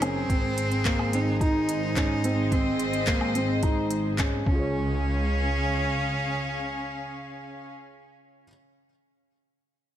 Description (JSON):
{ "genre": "piano and strings electronica", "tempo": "108 BPM", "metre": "4/4", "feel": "straight", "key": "Db major", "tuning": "A4 = 440 Hz", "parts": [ { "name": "bright cello", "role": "melody", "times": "0.0-7.7 s", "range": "C4 to Eb4", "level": "-31 LUFS", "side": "right 1 dB", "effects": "digital delay" }, { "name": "warm studio string section", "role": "sustained chords", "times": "0.0-7.7 s", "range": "Db3 to F5", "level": "-32 LUFS", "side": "equal", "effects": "none" }, { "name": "felt-muted upright piano", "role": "riff", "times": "0.0-8.5 s", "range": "Bb3 to Db5", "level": "-29 LUFS", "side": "equal", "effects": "digital delay" }, { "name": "dark studio double bass section", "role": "bass", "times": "0.0-6.4 s", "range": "Gb1 to Db2", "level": "-30 LUFS", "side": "equal", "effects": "sidechain pumping" }, { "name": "organic electronic drum kit", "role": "drums", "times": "0.0-4.3 s", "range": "handclaps, hi-hat, woodblock", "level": "-33 LUFS", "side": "equal", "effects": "none" }, { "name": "electronic kick drum", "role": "drums", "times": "0.3-4.6 s", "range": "none", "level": "-26 LUFS", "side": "equal", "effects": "none" } ], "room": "light reverb, small room ambience", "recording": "none", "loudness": "-23 LUFS", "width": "side -11 dB against mid", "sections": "0.0-4.7 A section; 4.7-7.0 B section", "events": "drop 0.0-4.7", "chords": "0.3 Ab; 4.5 Db" }